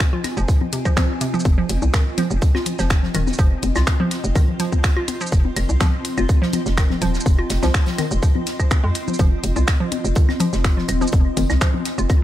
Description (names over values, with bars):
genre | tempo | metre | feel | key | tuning
minimal techno | 124 BPM | 4/4 | straight | F minor | A4 = 438 Hz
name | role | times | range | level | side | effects
electronic kick drum | drums | 0.0-12.2 s | none | -17 LUFS | equal | studio reverb
garage drum kit | drums | 0.0-12.2 s | finger snaps, hi-hat, shaker | -26 LUFS | equal | studio reverb
tambourine and snare drum | drums | 0.0-12.2 s | none | -36 LUFS | right 1 dB | high-pass filter on snare, studio reverb, high-pass filter on perc, high-pass filter on room
granular cloud pad | texture | 0.0-12.2 s | C4 to C6 | -28 LUFS | equal | built-in reverb, sidechain pumping
hollow square pluck | riff | 0.1-12.1 s | C3 to F4 | -26 LUFS | right 1 dB | chorus, sidechain pumping, ping-pong delay
electronic congas, toms and claves | percussion | 0.1-12.2 s | none | -28 LUFS | left 7 dB | studio reverb, digital delay
hollow knocking FM bass | bass | 0.4-12.1 s | Eb1 to F2 | -21 LUFS | equal | sidechain pumping
room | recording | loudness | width
digital ambience | none | -17 LUFS | side -13 dB against mid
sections
0.0-12.2 A section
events
none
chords
0.0 Fm7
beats
0.00 0.48 0.97 | 1.45 1.94 2.42 2.90 | 3.39 3.87 4.36 4.84 | 5.32 5.81 6.29 6.78 | 7.26 7.74 8.23 8.71 | 9.19 9.68 10.16 10.65 | 11.13 11.61 12.10